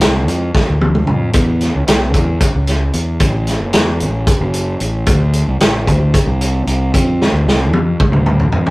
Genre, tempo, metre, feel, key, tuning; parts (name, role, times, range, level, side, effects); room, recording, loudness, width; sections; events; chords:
psychedelic rock; 225 BPM (eighths); 7/8; straight; A4 = 441 Hz
fuzz fingered electric bass; bass; 0.0-8.7 s; F#1 to F2; -15 LUFS; equal; overdrive
vintage drum kit; drums; 0.0-8.7 s; hi-hat, kick drum, snare drum, toms; -14 LUFS; equal
light reverb; rough rehearsal-room recording, warm saturation; -12 LUFS; side -21 dB against mid
0.0-8.7 A section
drum fill 0.5-1.3, 7.2-8.7